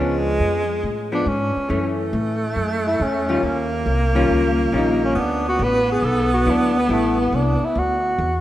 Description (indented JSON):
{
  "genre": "jazz",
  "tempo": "139 BPM",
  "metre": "4/4",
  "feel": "swing 68% on 8ths",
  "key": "unclear",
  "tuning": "A4 = 439 Hz",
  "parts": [
    { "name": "breathy tenor saxophone", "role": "melody", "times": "0.0-8.4 s", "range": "A3 to B4", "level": "-23 LUFS", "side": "equal", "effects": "none" },
    { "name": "clear alto saxophone", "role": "second line", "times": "0.0-8.4 s", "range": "G#3 to B3", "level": "-22 LUFS", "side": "right 1 dB", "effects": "none" },
    { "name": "hollow-body jazz guitar", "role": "accompaniment", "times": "0.0-7.6 s", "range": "D3 to F4", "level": "-24 LUFS", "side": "left 2 dB", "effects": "none" },
    { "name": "upright bass", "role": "bass", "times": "0.0-8.4 s", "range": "A1 to A2", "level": "-24 LUFS", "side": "equal", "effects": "none" }
  ],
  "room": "wet lush hall reverb, RT60 2.6 s",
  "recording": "rough home demo mix",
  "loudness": "-17 LUFS",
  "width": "side -13 dB against mid",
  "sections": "0.0-8.4 A section",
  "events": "none",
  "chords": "0.0 C#7b9; 1.7 F#m7; 3.4 Eb9; 5.2 D69; 6.9 Am7; 7.8 Dadd9"
}